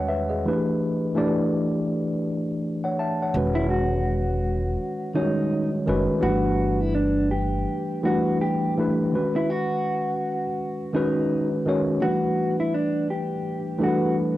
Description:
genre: lo-fi hip hop.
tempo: 83 BPM.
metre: 4/4.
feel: swing 60% on 16ths.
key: unclear.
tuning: A4 = 441 Hz.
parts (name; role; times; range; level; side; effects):
tine electric piano; accompaniment; 0.0-14.4 s; E2 to A5; -23 LUFS; equal; medium stereo tremolo, low-pass filter, cassette tape.
upright bass; bass; 3.3-7.6 s; E1 to G1; -26 LUFS; equal; transformer saturation.
mellow electric guitar; melody; 3.6-14.2 s; D4 to G4; -26 LUFS; right 1 dB; none.
room: moderate studio reverb, RT60 0.6 s.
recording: home recording on cassette.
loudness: -22 LUFS.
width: side -15 dB against mid.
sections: 0.0-3.3 A section; 3.3-14.4 B section.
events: none.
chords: 0.5 Gadd9; 3.3 Emaj9; 6.2 Gadd9; 9.1 Emaj13/D# (rootless); 12.0 Gadd9.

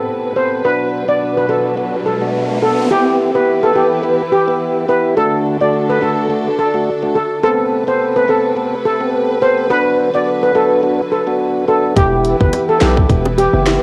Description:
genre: dancehall.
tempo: 106 BPM.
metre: 4/4.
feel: swing 56% on 16ths.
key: E minor.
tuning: A4 = 439 Hz.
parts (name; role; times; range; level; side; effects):
tonewheel organ; accompaniment; 0.0-13.8 s; A3 to A4; -20 LUFS; equal; stopped rotary speaker, sidechain pumping, low-pass filter, cassette tape, plate reverb.
warm studio string section; sustained chords; 0.0-13.8 s; A2 to B4; -23 LUFS; equal; sidechain pumping, low-pass filter, cassette tape, plate reverb.
steel pan; melody; 0.4-13.5 s; G4 to D5; -18 LUFS; equal; low-pass filter, cassette tape, tape echo, plate reverb.
riser; sound effects; 1.7-2.9 s; none; -25 LUFS; equal; none.
hard-hitting 808-style bass; bass; 12.0-13.8 s; E1 to B1; -19 LUFS; equal; none.
island pop drum kit; drums; 12.0-13.8 s; finger snaps, hi-hat, kick drum, rim click, snare drum; -18 LUFS; equal; cassette tape.
bongos; percussion; 12.5-13.5 s; none; -25 LUFS; equal; none.
room: wet booth ambience, RT60 0.2 s.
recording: home recording on cassette.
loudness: -15 LUFS.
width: mono.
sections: 0.0-2.9 A section; 2.9-13.8 B section.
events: filter sweep 0.0-2.9; riser 1.7-2.9.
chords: 0.0 Amadd9; 0.6 Bm; 2.9 Em; 5.2 D; 7.4 Amadd9; 9.7 Bm; 12.0 Em.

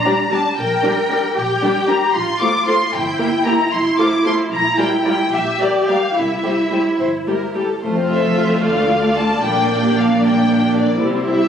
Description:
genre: quick classical-period movement for string orchestra.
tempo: 75 BPM (dotted quarters).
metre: 6/8.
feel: straight.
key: F major.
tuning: A4 = 441 Hz.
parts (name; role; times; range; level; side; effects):
rich studio violin section; melody; 0.0-11.5 s; D5 to D6; -19 LUFS; left 3 dB; none.
rich studio cello section; bass; 0.0-11.5 s; D2 to Bb4; -20 LUFS; right 1 dB; none.
rich studio double bass section; bass; 0.0-11.5 s; F1 to D2; -28 LUFS; equal; none.
rich studio violin section; second line; 0.1-11.5 s; G3 to D5; -25 LUFS; left 3 dB; none.
rich studio viola section; accompaniment; 0.1-11.5 s; G3 to G4; -19 LUFS; right 1 dB; none.
room: wet scoring stage reverb, RT60 1.7 s.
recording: recorded on a phone in the room, studio ambience, compression.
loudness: -14 LUFS.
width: side -8 dB against mid.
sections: 0.0-7.8 A section; 7.8-11.5 B section.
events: none.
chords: 0.0 Gm/Bb; 2.1 F/A; 2.9 Edim/G; 3.7 F; 4.5 Bb5; 5.3 Gm/Bb; 6.2 C; 7.8 F; 8.6 Dm; 9.4 Gm/Bb.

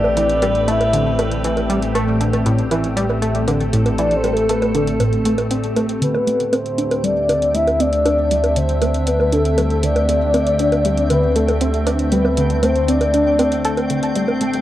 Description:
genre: ambient, sequencer-driven space music.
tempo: 118 BPM.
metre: 4/4.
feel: straight.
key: unclear.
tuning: A4 = 440 Hz.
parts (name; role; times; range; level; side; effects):
soft octave-layered synth lead; melody; 0.0-13.9 s; A4 to E5; -20 LUFS; left 1 dB; chorus, tremolo, cassette tape, tape echo.
evolving wavetable pad; sustained chords; 0.0-14.6 s; A2 to E5; -22 LUFS; left 1 dB; chorus, built-in reverb, cassette tape.
tight sequenced synth; riff; 0.0-14.6 s; A2 to A4; -21 LUFS; equal; chorus, cassette tape, tape echo.
fat analog bass; bass; 0.0-14.6 s; A1 to D2; -22 LUFS; equal; none.
electronic bongos and hi-hat; percussion; 0.0-14.6 s; none; -24 LUFS; right 2 dB; cassette tape, tape echo.
twinkling granular texture; texture; 6.7-14.6 s; G5; -36 LUFS; equal; built-in reverb, cassette tape.
room: wet small room reverb, RT60 0.6 s.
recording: home recording on cassette.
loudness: -15 LUFS.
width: side -13 dB against mid.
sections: 0.0-6.0 A section; 6.0-14.6 A section.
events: fade-in on synth texture 6.0-14.6; filter sweep on synth arpeggio sound 6.0-14.6.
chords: 0.0 Am7; 6.0 D7sus4.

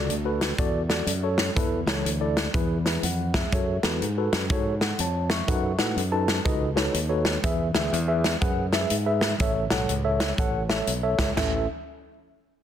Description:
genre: uptempo gospel.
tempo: 122 BPM.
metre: 4/4.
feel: swing 63% on 8ths.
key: A major.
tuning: A4 = 440 Hz.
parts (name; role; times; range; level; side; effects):
mellow tine electric piano; accompaniment; 0.0-11.7 s; A1 to C#6; -27 LUFS; left 1 dB; fast stereo tremolo.
fingered electric bass; bass; 0.0-11.7 s; A1 to A2; -28 LUFS; equal; none.
natural country drum kit; drums; 0.1-11.5 s; china cymbal, hi-hat, kick drum, snare drum, toms; -26 LUFS; equal; none.
room: light reverb, small room ambience.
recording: dense, heavily limited modern master.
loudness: -22 LUFS.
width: side -10 dB against mid.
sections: 0.0-11.4 A section; 11.4-12.6 B section.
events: none.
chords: 0.0 D; 1.6 Esus4; 2.5 E; 3.5 F#m; 5.5 B7/F#; 7.4 E; 9.4 A.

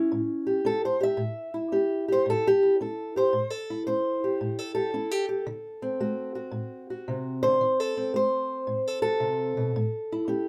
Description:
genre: acoustic country blues, solo or duo.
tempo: 112 BPM.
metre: 4/4.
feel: swing 66% on 8ths.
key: unclear.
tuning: A4 = 440 Hz.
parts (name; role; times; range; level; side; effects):
fingerpicked old ladder-braced acoustic guitar; solo; 0.0-10.5 s; A2 to E5; -27 LUFS; equal; none.
room: wet booth ambience, RT60 0.2 s.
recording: heard from further back in the room.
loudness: -27 LUFS.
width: mono.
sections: 0.0-10.5 A section.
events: steel-string acoustic guitar solo 0.0-10.5.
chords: 0.0 A7; 5.5 D7; 7.6 D#dim7; 9.7 A7.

